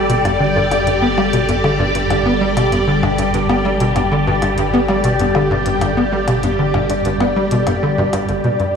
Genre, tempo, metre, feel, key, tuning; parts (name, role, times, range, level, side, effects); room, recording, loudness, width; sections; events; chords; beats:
ambient, sequencer-driven space music; 97 BPM; 4/4; straight; G major; A4 = 439 Hz
phased string machine; sustained chords; 0.0-8.8 s; G3 to D5; -18 LUFS; left 1 dB; ensemble chorus, phaser
tight sequencer bass; riff; 0.0-8.7 s; G1 to B3; -18 LUFS; equal; ensemble chorus, analog delay
warm sub bass; bass; 0.0-8.8 s; G1; -26 LUFS; equal
bubbling stepped-filter texture; texture; 0.0-8.8 s; D5; -23 LUFS; equal; chorus, built-in reverb
electronic hi-hat and percussion blips; percussion; 0.1-8.7 s; -28 LUFS; left 4 dB; overdrive, analog delay
wet huge ambient reverb, RT60 8.9 s; studio reverb; -14 LUFS; side -6 dB against mid
0.0-8.3 A section
0.0 Gsus2
0.25 | 0.87 1.48 2.10 2.72 | 3.34 3.96 4.58 5.20 | 5.81 6.43 7.05 7.67 | 8.29